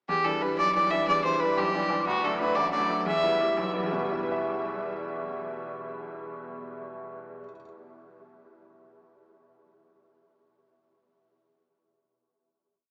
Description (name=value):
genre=celtic folk, Celtic jig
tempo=121 BPM (dotted quarters)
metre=6/8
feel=straight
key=E minor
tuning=A4 = 440 Hz
part: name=clear fiddle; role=melody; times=0.1-3.7 s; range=F#4 to E5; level=-29 LUFS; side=equal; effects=tape echo
part: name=bright upright piano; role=accompaniment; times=0.1-7.6 s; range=A1 to E5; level=-33 LUFS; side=equal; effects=none
room=wet huge ambient reverb, RT60 8.6 s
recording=dreamy mix soaked in reverb, small speaker sound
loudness=-27 LUFS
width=mono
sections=0.1-4.1 A section; 4.1-6.1 final chord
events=none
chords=0.1 Em7; 2.1 D; 3.1 Em